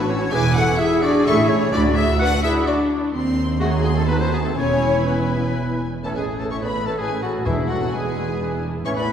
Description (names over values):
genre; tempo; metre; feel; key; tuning
quick classical-period movement for symphony orchestra; 127 BPM; 3/4; straight; A major; A4 = 439 Hz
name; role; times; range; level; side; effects
rich chamber violin section; melody; 0.0-9.1 s; E5 to E6; -32 LUFS; left 4 dB; none
clear oboe; second line; 0.0-9.1 s; E4 to G#5; -30 LUFS; equal; none
rich chamber violin section; second line; 0.0-9.1 s; E4 to G#5; -28 LUFS; left 3 dB; none
warm studio viola section; accompaniment; 0.0-9.1 s; E3 to A4; -27 LUFS; equal; none
rich symphonic double bass section; bass; 0.0-9.1 s; E1 to D#2; -24 LUFS; right 3 dB; none
warm chamber cello section; bass; 0.0-9.1 s; D2 to A2; -27 LUFS; right 3 dB; none
clear clarinet; second line; 0.1-9.0 s; A3 to B4; -28 LUFS; equal; none
silver concert flute; second line; 0.1-9.0 s; F#4 to G#5; -29 LUFS; left 1 dB; none
clear French horn section; sustained chords; 0.1-9.1 s; E3 to G#4; -25 LUFS; left 3 dB; none
mellow bassoon; accompaniment; 6.0-9.0 s; E3; -33 LUFS; equal; none
mellow trumpet section; stabs; 6.0-9.1 s; E4 to C#5; -28 LUFS; equal; none
timpani; percussion; 7.5-8.1 s; E2; -30 LUFS; right 1 dB; none
room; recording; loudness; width
wet concert hall reverb, RT60 2.3 s; heard from further back in the room; -18 LUFS; side -8 dB against mid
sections
0.0-6.0 A section; 6.0-9.1 B section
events
none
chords
0.3 E7; 1.3 A; 1.7 Bm/D; 3.1 D#dim7; 4.6 E; 6.0 A; 7.5 E7